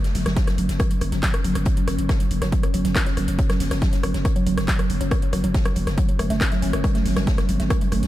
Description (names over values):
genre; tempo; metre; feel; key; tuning
driving peak-time techno; 139 BPM; 4/4; straight; unclear; A4 = 438 Hz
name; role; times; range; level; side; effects
deep dark ambient pad; drone; 0.5-8.1 s; F#3 to C#4; -30 LUFS; right 1 dB; chorus, built-in reverb, sidechain pumping
loose indie drum kit; drums; 0.0-8.1 s; hi-hat, snare drum; -38 LUFS; left 2 dB; sidechain pumping on hats, high-pass filter on hats, high-pass filter on snare, high-pass filter on room
techno drum kit; drums; 0.0-8.1 s; handclaps, hi-hat, rim click; -29 LUFS; left 1 dB; none
woody wave-folded pluck; riff; 0.1-8.0 s; F#3 to C#4; -27 LUFS; right 1 dB; chorus, sidechain pumping, ping-pong delay
growling 808-style bass; bass; 0.1-8.1 s; F#1 to G1; -27 LUFS; equal; tube saturation, sidechain pumping, low-pass filter
electronic kick drum; drums; 0.4-7.8 s; none; -22 LUFS; equal; overdrive
room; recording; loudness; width
moderate cathedral reverb, RT60 5.8 s; dreamy mix soaked in reverb; -19 LUFS; side -14 dB against mid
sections
0.0-8.1 A section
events
none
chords
0.0 F#5